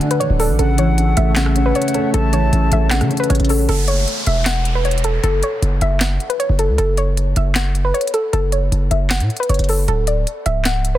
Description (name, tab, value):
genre	hip hop, trap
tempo	155 BPM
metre	4/4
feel	half-time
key	F# minor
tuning	A4 = 441 Hz
part	soft round pluck	melody	0.0-11.0 s	A4 to F#5	-21 LUFS	equal	chorus, low-pass filter
part	dark concert grand piano	accompaniment	0.0-3.7 s	C#3 to D5	-20 LUFS	equal	low-pass filter
part	warbly tape-like pad	sustained chords	0.0-3.7 s	D3 to F#5	-26 LUFS	right 1 dB	chorus, built-in reverb, phaser
part	trap drum kit	drums	0.0-10.9 s	handclaps, hi-hat, rim click, snare drum	-23 LUFS	equal	none
part	distorted 808-style bass	bass	0.3-11.0 s	C#1 to C#3	-17 LUFS	equal	distortion
part	hollow concert flute	second line	0.6-2.9 s	E5 to A5	-28 LUFS	left 4 dB	tape echo
part	downlifter	sound effects	3.7-6.8 s	none	-27 LUFS	right 1 dB	none
room	little or no reverb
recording	dense, heavily limited modern master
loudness	-14 LUFS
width	side -13 dB against mid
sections	0.0-3.7 A section; 3.7-11.0 B section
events	none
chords	0.0 D; 0.6 A; 3.7 F#m; 9.9 D5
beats	0.20 | 0.59 0.98 1.36 1.75 | 2.14 2.53 2.91 3.30 | 3.69 4.07 4.46 4.85 | 5.24 5.62 6.01 6.40 | 6.78 7.17 7.56 7.95 | 8.33 8.72 9.11 9.49 | 9.88 10.27 10.65